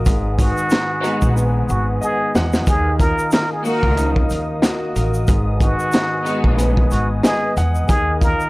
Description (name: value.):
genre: hip hop, boom-bap hip-hop.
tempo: 92 BPM.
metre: 4/4.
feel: swing 56% on 16ths.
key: unclear.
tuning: A4 = 440 Hz.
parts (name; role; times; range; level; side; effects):
dark baby grand piano; accompaniment; 0.0-8.5 s; Ab2 to Gb5; -24 LUFS; left 1 dB; cassette tape, high-pass filter, low-pass filter.
dark analog pad; sustained chords; 0.0-8.5 s; Bb4 to Eb6; -28 LUFS; right 1 dB; chorus, high-pass filter, low-pass filter.
upright bass; bass; 0.1-8.3 s; Ab1 to Fb2; -20 LUFS; equal; none.
crunchy breakbeat drum kit; drums; 0.1-8.4 s; hi-hat, kick drum, snare drum; -18 LUFS; equal; none.
tube shaker; percussion; 0.1-8.5 s; none; -38 LUFS; right 1 dB; none.
trumpet with plunger mute; melody; 0.4-8.5 s; Gb4 to Bb4; -22 LUFS; equal; high-pass filter, low-pass filter.
muted studio string section; stabs; 1.0-6.7 s; Bb3 to Gb4; -25 LUFS; equal; high-pass filter, low-pass filter, analog delay.
room: studio reverb.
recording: dry, gritty hardware recording.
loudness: -15 LUFS.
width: side -21 dB against mid.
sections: 0.0-8.5 A section.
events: drum fill 1.4-2.7.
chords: 0.1 Abm7; 2.7 Ebmadd9; 5.3 Abm7; 7.9 Ebsus2.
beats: | 0.07 0.72 1.37 2.02 | 2.67 3.33 3.98 4.63 | 5.28 5.93 6.59 7.24 | 7.89.